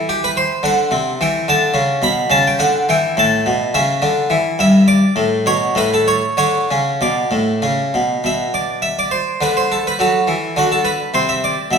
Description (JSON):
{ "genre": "classical, baroque-style suite movement for harpsichord", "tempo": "105 BPM", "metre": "3/4", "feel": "rubato", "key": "D major", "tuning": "A4 = 439 Hz", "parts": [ { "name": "harpsichord", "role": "solo", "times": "0.0-11.8 s", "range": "G2 to B5", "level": "-14 LUFS", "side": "equal", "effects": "none" } ], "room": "wet recital hall reverb, RT60 1.5 s", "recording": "minimal, uncompressed stereo recording", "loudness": "-14 LUFS", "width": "side -6 dB against mid", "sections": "0.0-8.3 A section; 8.3-11.8 A section", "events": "none", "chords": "0.0 D13; 1.2 E5; 2.3 Dmaj7/C#; 2.9 A; 4.0 Dsus2; 4.6 N.C.; 5.2 D5/A; 5.8 N.C.; 6.4 D5; 8.3 Bmadd11; 10.0 D7", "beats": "0.08 0.64 | 1.20 1.76 2.33 | 2.90 3.46 4.02 | 4.59 5.17 5.76 | 6.39 7.02 7.64 | 8.25 8.84 9.41 | 9.99 10.56 11.13 | 11.71" }